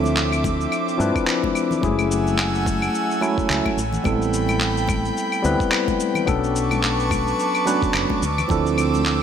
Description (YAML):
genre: sunset chillout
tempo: 108 BPM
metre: 4/4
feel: swing 57% on 16ths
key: unclear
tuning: A4 = 440 Hz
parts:
  - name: tine electric piano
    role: accompaniment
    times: 0.0-9.2 s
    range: F3 to B4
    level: -22 LUFS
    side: moving between left 6 dB and right 6 dB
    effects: auto-pan, ping-pong delay
  - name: airy breathy pad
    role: sustained chords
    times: 0.0-9.2 s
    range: A3 to E6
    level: -25 LUFS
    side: equal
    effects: chorus
  - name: mellow fretless electric bass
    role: bass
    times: 0.0-9.2 s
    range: F#1 to G2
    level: -25 LUFS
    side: equal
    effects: none
  - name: congas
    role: percussion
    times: 0.0-9.0 s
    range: none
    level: -32 LUFS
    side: left 6 dB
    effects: none
  - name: electronic cabasa, handclaps and claves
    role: drums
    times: 0.1-9.2 s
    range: none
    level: -26 LUFS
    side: left 2 dB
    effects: overdrive, studio reverb
  - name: electronic kick drum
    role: drums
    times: 0.4-8.6 s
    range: none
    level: -26 LUFS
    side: equal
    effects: overdrive, studio reverb
room: light reverb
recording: none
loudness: -18 LUFS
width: side -8 dB against mid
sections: 0.0-9.2 A section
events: none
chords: 0.0 Dm9; 1.8 F#m9; 3.8 Am9; 6.3 Bm9; 8.2 Dm9